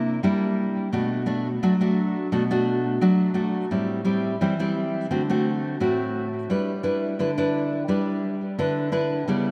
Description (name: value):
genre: samba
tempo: 86 BPM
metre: 4/4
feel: straight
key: unclear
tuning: A4 = 440 Hz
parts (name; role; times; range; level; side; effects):
- nylon-string guitar; solo; 0.0-9.5 s; A2 to B4; -24 LUFS; equal; tape echo
room: wet lush hall reverb, RT60 2.8 s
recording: dreamy mix soaked in reverb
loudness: -24 LUFS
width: mono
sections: 0.0-9.5 A section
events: none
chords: 0.0 C9; 0.9 Bm7; 3.7 Am7; 5.1 D7; 6.5 G6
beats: 0.23 | 0.93 1.62 2.32 3.01 | 3.71 4.41 5.10 5.80 | 6.50 7.19 7.89 8.58 | 9.28